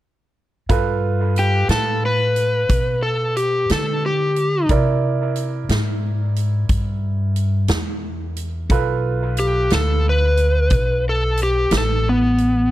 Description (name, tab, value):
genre	slow blues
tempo	60 BPM (dotted quarters)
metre	12/8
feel	straight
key	G mixolydian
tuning	A4 = 441 Hz
part	clear upright piano	accompaniment	0.7-12.7 s	E4 to D5	-27 LUFS	right 6 dB	dub echo
part	upright bass	bass	0.7-12.7 s	A1 to D3	-20 LUFS	equal	none
part	swinging big-band drum kit	drums	0.7-12.5 s	hi-hat, kick drum, snare drum	-23 LUFS	equal	none
part	overdriven slide guitar	melody	1.4-12.7 s	B3 to B4	-19 LUFS	left 1 dB	none
room	studio reverb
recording	echo-heavy mix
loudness	-17 LUFS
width	side -15 dB against mid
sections	0.7-12.7 A section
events	none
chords	0.7 G7; 4.7 C7; 8.7 G7 (rootless)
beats	| 0.69 1.69 2.69 3.69 | 4.70 5.70 6.70 7.71 | 8.71 9.71 10.71 11.72